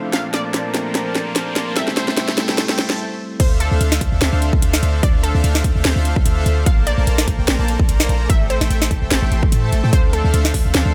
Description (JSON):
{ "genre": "future bass", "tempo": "147 BPM", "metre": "4/4", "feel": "swing 55% on 16ths, half-time", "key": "D minor", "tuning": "A4 = 439 Hz", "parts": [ { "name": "tine electric piano", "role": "accompaniment", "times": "0.0-3.4 s", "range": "F3 to E4", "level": "-29 LUFS", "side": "equal", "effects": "sidechain pumping, digital delay" }, { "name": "clear studio string section", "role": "sustained chords", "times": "0.0-10.9 s", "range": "Bb2 to A4", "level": "-34 LUFS", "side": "equal", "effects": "sidechain pumping" }, { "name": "soft supersaw", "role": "riff", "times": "0.0-10.9 s", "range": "A3 to C6", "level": "-27 LUFS", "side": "equal", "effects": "sidechain pumping, digital delay" }, { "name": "riser", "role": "sound effects", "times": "0.0-3.0 s", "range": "none", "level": "-33 LUFS", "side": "equal", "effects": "none" }, { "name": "unison pluck", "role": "melody", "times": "0.1-10.4 s", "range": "A4 to F5", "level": "-29 LUFS", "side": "equal", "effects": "sidechain pumping, dub echo" }, { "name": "trap drum kit", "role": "drums", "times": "0.1-10.8 s", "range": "crash cymbal, hi-hat, snare drum", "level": "-23 LUFS", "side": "equal", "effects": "none" }, { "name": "warm 808-style bass", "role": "bass", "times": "3.4-10.9 s", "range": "A1 to A2", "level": "-20 LUFS", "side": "equal", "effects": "sidechain pumping" }, { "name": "electronic kick drum", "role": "drums", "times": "3.4-10.6 s", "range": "none", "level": "-19 LUFS", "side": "equal", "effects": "none" } ], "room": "light reverb", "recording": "none", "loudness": "-17 LUFS", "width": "mono", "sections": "0.0-3.4 A section; 3.4-10.9 B section", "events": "build-up 0.0-3.4; drum fill 0.0-3.0; riser 0.0-3.0; filter sweep on supersaw synth 0.0-3.4; break 3.0-3.4; drop 3.4-10.9", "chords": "0.1 Bbmaj7; 1.8 Am7; 3.4 Dm7; 6.7 Bbmaj7; 8.3 Am7; 9.9 Dm7" }